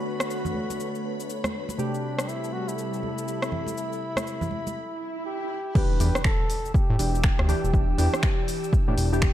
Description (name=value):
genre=deep house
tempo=121 BPM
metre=4/4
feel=swing 61% on 16ths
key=E minor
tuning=A4 = 440 Hz
part: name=trumpet with bucket mute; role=melody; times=0.0-8.3 s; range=D4 to B4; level=-34 LUFS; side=equal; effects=digital delay
part: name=soft string machine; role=sustained chords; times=0.0-9.3 s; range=G3 to E6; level=-37 LUFS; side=equal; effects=ensemble chorus, sidechain pumping
part: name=warm analog keys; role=stabs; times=0.0-9.3 s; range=C3 to G4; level=-31 LUFS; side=equal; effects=chorus, sidechain pumping
part: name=ethereal airy pad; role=texture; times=0.0-4.8 s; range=F#4 to B5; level=-40 LUFS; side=left 3 dB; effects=ensemble chorus, built-in reverb, phaser, sidechain pumping
part: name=string machine, violins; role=texture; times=0.0-4.8 s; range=B5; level=-43 LUFS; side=right 1 dB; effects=ensemble chorus, sidechain pumping
part: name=deep house drum kit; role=drums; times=0.2-9.3 s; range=cabasa, crash cymbal, finger snaps, hi-hat, rim click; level=-31 LUFS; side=equal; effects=overdrive
part: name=congas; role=percussion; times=0.4-4.7 s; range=none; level=-34 LUFS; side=right 2 dB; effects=sidechain pumping on perc
part: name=swell and impact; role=sound effects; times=4.9-7.7 s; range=none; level=-33 LUFS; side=equal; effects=none
part: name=electronic kick drum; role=drums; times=5.8-9.3 s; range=none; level=-22 LUFS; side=equal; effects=overdrive
part: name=smooth synth bass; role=bass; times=6.0-9.3 s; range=E1 to A2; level=-24 LUFS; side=equal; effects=tube saturation, sidechain pumping
room=light reverb, digital ambience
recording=dark, warm production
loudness=-24 LUFS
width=side -12 dB against mid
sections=0.0-5.8 A section; 5.8-9.3 B section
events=break 4.8-5.8; swell 4.9-5.8; drop 5.8-9.3; impact 5.8-7.7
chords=0.0 Bm7; 1.8 Am7; 5.8 Em7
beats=0.30 0.79 1.29 | 1.79 2.28 2.78 3.27 | 3.77 4.26 4.76 5.26 | 5.75 6.25 6.74 7.24 | 7.74 8.23 8.73 9.22